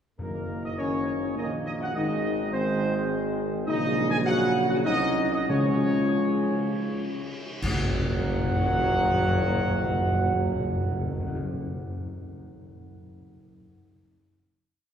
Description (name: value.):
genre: classical, ceremonial fanfare.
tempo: 78-105 BPM.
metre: 3/4.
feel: straight.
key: Gb lydian.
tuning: A4 = 440 Hz.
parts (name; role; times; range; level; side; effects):
dark trumpet section; melody; 0.2-11.4 s; Bb4 to Ab5; -30 LUFS; right 2 dB; none.
mellow French horn section; sustained chords; 0.2-11.4 s; Gb3 to Ab4; -30 LUFS; left 3 dB; none.
warm trombone section; sustained chords; 0.2-11.4 s; Bb2 to Db4; -32 LUFS; right 2 dB; none.
warm tuba; bass; 0.2-11.4 s; Gb1 to Db2; -30 LUFS; right 2 dB; none.
timpani; percussion; 0.2-1.0, 5.5-11.4 s; Gb2 to Db3; -31 LUFS; equal; none.
cymbal swell, clash cymbals and concert bass drum; percussion; 3.7-9.1 s; none; -34 LUFS; equal; none.
room: wet cathedral reverb, RT60 4.2 s.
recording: recorded in a church or concert hall.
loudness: -24 LUFS.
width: side -8 dB against mid.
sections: 0.2-7.6 A section; 7.6-12.0 final chord.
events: slowing down 2.8-7.6; band accent 7.6-8.4.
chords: 0.2 Gb6; 1.9 Ab; 3.7 Gb/Bb; 5.5 Db; 7.6 Gb6.